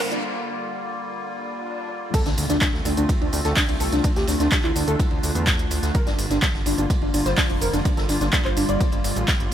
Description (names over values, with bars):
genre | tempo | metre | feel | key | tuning
progressive house | 126 BPM | 4/4 | straight | D minor | A4 = 442 Hz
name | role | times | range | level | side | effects
evolving wavetable pad | sustained chords | 0.0-9.5 s | D3 to F4 | -28 LUFS | equal | chorus, built-in reverb, sidechain pumping
soft round pluck | arpeggios | 0.0-9.5 s | D4 to D5 | -26 LUFS | equal | ensemble chorus, sidechain pumping, digital delay
fat analog bass | bass | 0.0-9.5 s | F1 to E2 | -26 LUFS | equal | sidechain pumping
deep house drum kit | drums | 0.0-9.5 s | crash cymbal, handclaps, hi-hat, shaker, snare drum | -26 LUFS | equal | sidechain pumping on hats, sidechain pumping on cymbals, sidechain pumping on perc
riser, swell and impact | sound effects | 0.0-4.0 s | none | -35 LUFS | equal | none
electronic kick drum | drums | 2.1-9.4 s | none | -23 LUFS | equal | overdrive
vintage drum kit | drums | 2.1-9.5 s | hi-hat, ride cymbal, snare drum | -35 LUFS | right 1 dB | sidechain pumping on cymbals, high-pass filter on cymbals, sidechain pumping on hats, high-pass filter on hats, high-pass filter on snare, high-pass filter on room
room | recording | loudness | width
light reverb, small room ambience | high-pass filter | -20 LUFS | side -10 dB against mid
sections
0.0-2.1 A section; 2.1-9.5 B section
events
build-up 0.0-2.1; drum fill 0.0; riser 0.0; filter sweep on synth pluck 0.0-2.1; filter sweep on ambient pad 0.0-2.1; filter sweep 0.0-2.1; break 0.2-2.1; swell 1.4-2.1; drop 2.1-9.5; impact 2.1-4.0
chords
0.0 Gm7; 2.1 Dm7; 5.9 Gm7